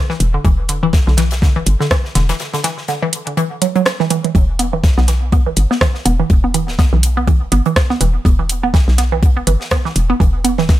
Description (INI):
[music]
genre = minimal techno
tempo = 123 BPM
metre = 4/4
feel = swing 57% on 16ths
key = E minor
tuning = A4 = 439 Hz
[part]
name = hollow square pluck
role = riff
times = 0.0-10.6 s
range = D3 to B3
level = -18 LUFS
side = right 2 dB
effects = chorus, phaser, sidechain pumping, dub echo
[part]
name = tight metal drum kit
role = drums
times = 0.1-10.8 s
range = hi-hat, snare drum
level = -28 LUFS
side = left 2 dB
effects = sidechain pumping on hats, high-pass filter on hats, small room ambience, high-pass filter on snare, high-pass filter on room
[part]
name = hollow knocking FM bass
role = bass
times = 0.2-10.7 s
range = D1 to B1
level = -16 LUFS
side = equal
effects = sidechain pumping
[part]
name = garage drum kit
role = drums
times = 0.2-10.6 s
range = hi-hat, rim click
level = -17 LUFS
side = right 2 dB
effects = overdrive, small room ambience
[part]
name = electronic kick drum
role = drums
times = 0.4-10.8 s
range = none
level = -12 LUFS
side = equal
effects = overdrive, small room ambience
[sound]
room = little or no reverb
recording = none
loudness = -12 LUFS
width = side -14 dB against mid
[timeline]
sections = 0.0-10.8 A section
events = break 2.4-4.3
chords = 0.0 E5